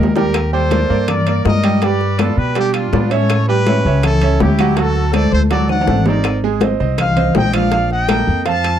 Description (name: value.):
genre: latin, salsa.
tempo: 163 BPM.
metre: 4/4.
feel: straight.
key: unclear.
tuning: A4 = 440 Hz.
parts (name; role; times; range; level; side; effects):
clear trumpet section; melody; 0.0-8.8 s; D4 to A5; -20 LUFS; left 2 dB; none.
bright concert grand piano; accompaniment; 0.0-8.8 s; F3 to Ab5; -20 LUFS; right 12 dB; none.
upright bass; bass; 0.0-8.8 s; Ab1 to B2; -17 LUFS; equal; none.
timbales; percussion; 0.0-8.8 s; none; -25 LUFS; right 6 dB; none.
bongos; percussion; 0.2-8.8 s; none; -23 LUFS; left 10 dB; none.
claves; percussion; 0.3-8.8 s; none; -31 LUFS; left 17 dB; none.
congas; percussion; 0.3-8.8 s; none; -20 LUFS; left 4 dB; none.
room: little or no reverb.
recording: dry, close 1970s-style studio recording.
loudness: -13 LUFS.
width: side -10 dB against mid.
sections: 0.3-8.8 A section.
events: drum fill 0.0-0.3, 5.1-6.2.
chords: 0.3 Ebmaj7; 1.8 G7; 3.3 A7; 4.8 D7; 6.2 Abadd9; 7.7 Bbmaj7(no3).